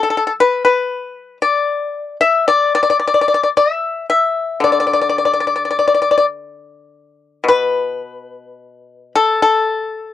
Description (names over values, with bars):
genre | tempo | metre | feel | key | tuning
chinese traditional, Chinese solo plucked strings | 51-58 BPM | 4/4 | rubato | D gong mode | A4 = 440 Hz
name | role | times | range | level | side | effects
pipa | solo | 0.0-10.1 s | B2 to E5 | -13 LUFS | left 4 dB | cassette tape
room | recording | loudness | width
moderate booth ambience, RT60 0.2 s | home recording on cassette | -13 LUFS | side -12 dB against mid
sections
0.0-6.9 A section; 6.9-10.1 B section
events
none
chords
none